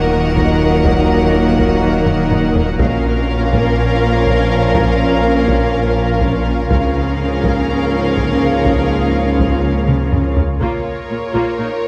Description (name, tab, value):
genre	cinematic, hybrid orchestral and electronic film score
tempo	123 BPM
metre	4/4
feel	straight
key	Bb minor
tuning	A4 = 440 Hz
part	warm symphonic violin section	melody	0.0-10.4 s	F5 to Gb5	-27 LUFS	equal	none
part	warm symphonic violin section	second line	0.0-11.9 s	Bb4 to Db5	-25 LUFS	equal	none
part	warm symphonic viola section	accompaniment	0.0-11.7 s	Bb3 to F4	-26 LUFS	equal	none
part	bright trombone section	sustained chords	0.0-10.3 s	Ab2 to Gb3	-24 LUFS	equal	none
part	evolving wavetable pad	sustained chords	0.0-11.9 s	Bb3 to Eb5	-26 LUFS	equal	chorus, built-in reverb
part	warm French horn section	sustained chords	0.0-10.3 s	Bb3 to Eb4	-24 LUFS	equal	none
part	saturated sub bass	bass	0.0-10.6 s	Eb1 to Db2	-24 LUFS	equal	none
part	warm studio double bass section	bass	0.0-10.4 s	Bb1 to Eb2	-24 LUFS	equal	none
part	warm symphonic cello section	bass	0.0-11.7 s	Bb2 to Eb3	-24 LUFS	equal	none
part	solo taiko drums	drums	0.4-11.6 s	none	-23 LUFS	equal	none
room	moderate scoring stage reverb, RT60 1.9 s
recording	none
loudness	-15 LUFS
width	mono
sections	0.0-10.6 A section; 10.6-11.9 B section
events	drum fill 2.1-2.8, 9.9-10.6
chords	0.0 Ebm; 2.8 Bbm; 6.7 Db6; 10.6 Bbm